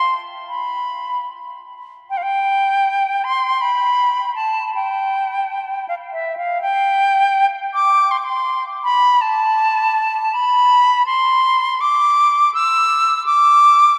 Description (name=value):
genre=classical, baroque-style fantasia for unaccompanied flute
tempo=81 BPM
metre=3/4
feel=rubato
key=C major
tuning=A4 = 440 Hz
part: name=silver concert flute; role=solo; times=0.0-14.0 s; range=E5 to E6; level=-17 LUFS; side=equal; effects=none
room=wet cathedral reverb, RT60 5.6 s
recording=in a vast, echoing space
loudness=-17 LUFS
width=mono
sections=0.0-2.1 A section; 2.1-14.0 B section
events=none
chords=none